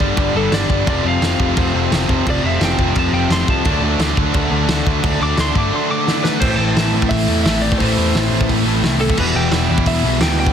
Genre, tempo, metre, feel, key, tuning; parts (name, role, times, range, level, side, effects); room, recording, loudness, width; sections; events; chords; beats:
punk rock; 173 BPM; 4/4; straight; A minor; A4 = 440 Hz
lightly driven lead guitar; melody; 0.0-10.5 s; A4 to D6; -23 LUFS; equal; ping-pong delay
crunchy overdriven guitar; riff; 0.0-10.5 s; E2 to D4; -21 LUFS; left 12 dB
distorted electric guitar; riff; 0.0-10.5 s; F2 to E4; -22 LUFS; right 16 dB; overdrive
sludgy distorted guitar; riff; 0.0-10.5 s; E2 to D4; -24 LUFS; equal; overdrive
overdriven picked electric bass; bass; 0.0-10.5 s; E1 to E2; -20 LUFS; equal
loose indie drum kit; drums; 0.0-10.5 s; crash cymbal, hi-hat, kick drum, snare drum; -20 LUFS; equal
little or no reverb; dense, heavily limited modern master; -14 LUFS; side -8 dB against mid
0.0-6.4 A section; 6.4-10.5 B section
lead electric guitar solo 0.0-6.4; drum fill 6.1-6.4
0.0 G; 0.9 F; 3.7 D; 6.4 Am; 9.2 Em
0.18 0.53 | 0.87 1.22 1.57 1.92 | 2.26 2.61 2.96 3.30 | 3.65 4.00 4.34 4.69 | 5.04 5.38 5.73 6.08 | 6.42 6.77 7.11 7.46 | 7.80 8.15 8.49 8.84 | 9.18 9.53 9.87 10.21